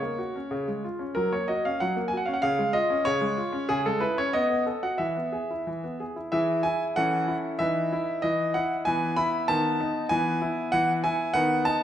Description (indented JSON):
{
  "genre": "classical-period piano sonatina",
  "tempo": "94 BPM",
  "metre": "2/4",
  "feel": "rubato",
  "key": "E major from 3.7 s",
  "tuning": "A4 = 440 Hz",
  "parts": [
    { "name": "bright grand piano", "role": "solo", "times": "0.0-11.8 s", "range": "C#3 to B5", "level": "-24 LUFS", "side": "equal", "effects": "none" }
  ],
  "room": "moderate recital hall reverb, RT60 1.5 s",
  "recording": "dark, warm production",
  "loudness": "-24 LUFS",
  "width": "side -10 dB against mid",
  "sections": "0.0-6.3 A section; 6.3-11.8 B section",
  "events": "none",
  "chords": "0.0 F#; 0.5 C#; 1.2 F#; 2.4 C#; 3.7 C#m; 4.3 B7; 5.0 E; 7.0 F#m7/E; 7.6 B/E; 8.9 E; 9.5 B7/D#; 10.1 E",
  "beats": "0.51 | 1.17 1.81 | 2.44 3.07 | 3.70 4.34 | 4.99 5.66 | 6.32 6.96 | 7.60 8.24 | 8.87 9.48 | 10.10 10.72 | 11.34"
}